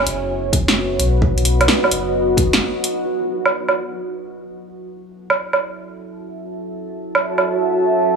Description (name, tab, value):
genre	future garage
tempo	130 BPM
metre	4/4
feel	swing 67% on 16ths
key	F# dorian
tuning	A4 = 436 Hz
part	deep dark ambient pad	sustained chords	0.0-8.2 s	F#4 to A5	-21 LUFS	right 1 dB	chorus, built-in reverb, sidechain pumping
part	warm sub bass	bass	0.0-2.6 s	F#1 to B1	-21 LUFS	left 1 dB	sidechain pumping
part	deep house drum kit	drums	0.1-7.4 s	hi-hat, snare drum, woodblock	-17 LUFS	right 2 dB	none
part	electronic kick drum	drums	0.5-2.5 s	none	-18 LUFS	equal	none
room	moderate lush hall reverb, RT60 1.9 s, digital ambience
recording	small room ambience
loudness	-16 LUFS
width	side -5 dB against mid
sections	0.0-3.1 A section; 3.1-8.2 B section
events	break 2.6-3.1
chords	0.0 B/F#; 3.1 F#m7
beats	0.30 0.76 | 1.22 1.68 2.15 2.61 | 3.07 3.53 3.99 4.45 | 4.92 5.38 5.84 6.30 | 6.76 7.22 7.68 8.15